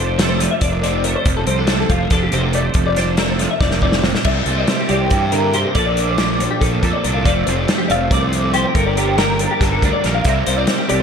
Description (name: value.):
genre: math rock and midwest emo.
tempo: 280 BPM (eighths).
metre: 7/8.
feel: straight.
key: F major.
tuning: A4 = 440 Hz.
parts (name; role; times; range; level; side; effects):
twelve-string electric guitar; accompaniment; 0.0-11.0 s; F2 to Bb4; -23 LUFS; right 7 dB; ensemble chorus.
twelve-string electric guitar; arpeggios; 0.0-11.0 s; F4 to F5; -22 LUFS; left 5 dB; analog chorus, digital delay.
fuzz fingered electric bass; bass; 0.0-11.0 s; F1 to G2; -21 LUFS; equal; overdrive.
overdriven electric guitar; riff; 0.2-11.0 s; F2 to E4; -25 LUFS; right 1 dB; none.
loose indie drum kit; drums; 0.2-11.0 s; crash cymbal, hi-hat, kick drum, snare drum; -19 LUFS; equal; gated reverb.
twelve-string electric guitar; melody; 4.9-11.0 s; G4 to F5; -21 LUFS; equal; ensemble chorus.
room: moderate lush hall reverb, RT60 1.7 s, small room ambience.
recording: bright 1980s-style digital production.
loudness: -14 LUFS.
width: side -6 dB against mid.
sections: 0.0-4.3 A section; 4.3-11.0 B section.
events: drum fill 3.6-4.3.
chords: 0.0 F6; 4.3 C7; 5.8 Bbmaj7; 7.3 F6; 8.8 Gm; 10.3 C7.